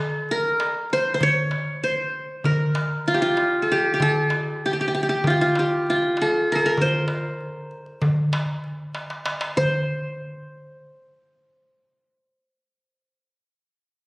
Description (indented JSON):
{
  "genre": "Turkish makam ensemble",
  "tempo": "194 BPM (eighths)",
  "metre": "9/8",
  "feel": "straight",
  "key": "C makam hicaz",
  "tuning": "A4 = 440 Hz",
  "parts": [
    { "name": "qanun", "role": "melody", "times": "0.0-13.5 s", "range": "F4 to Db5", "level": "-21 LUFS", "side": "equal", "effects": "none" },
    { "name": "darbuka", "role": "percussion", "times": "0.3-9.9 s", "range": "none", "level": "-25 LUFS", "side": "equal", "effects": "none" }
  ],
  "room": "wet recital hall reverb, RT60 1.6 s",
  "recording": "recorded on a phone in the room, studio reverb, compression",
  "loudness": "-20 LUFS",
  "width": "side -25 dB against mid",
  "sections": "0.0-9.6 A section; 9.6-12.4 B section",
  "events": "drum fill 8.9-9.6",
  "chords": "none"
}